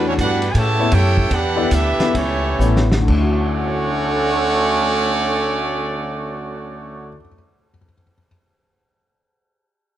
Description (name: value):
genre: jazz, big band swing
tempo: 118-168 BPM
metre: 4/4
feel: swing 66% on 8ths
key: D major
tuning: A4 = 440 Hz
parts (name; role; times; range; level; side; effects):
- bright trumpet section; melody; 0.0-7.2 s; A3 to A5; -22 LUFS; right 2 dB; none
- mellow trombone section; second line; 0.0-7.2 s; C#3 to G4; -22 LUFS; right 2 dB; none
- warm grand piano; accompaniment; 0.0-8.3 s; D2 to A6; -24 LUFS; left 4 dB; none
- upright bass; bass; 0.0-7.2 s; A1 to A2; -21 LUFS; equal; none
- vintage drum kit; drums; 0.2-3.2 s; crash cymbal, hi-hat, kick drum, ride cymbal, snare drum; -25 LUFS; equal; none
room: moderate large studio reverb, RT60 1.3 s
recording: dark, warm production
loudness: -16 LUFS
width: side -12 dB against mid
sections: 0.0-3.1 A section; 3.1-7.2 B section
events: slowing down 0.0-3.1; drum fill 2.6-3.1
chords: 0.0 Em9; 0.6 A7; 1.3 Em9; 2.1 A7; 3.1 Dmaj7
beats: 0.19 0.55 0.93 | 1.31 1.72 2.14 2.60 | 3.08 3.59 4.10 4.61 | 5.12 5.62 6.13 6.64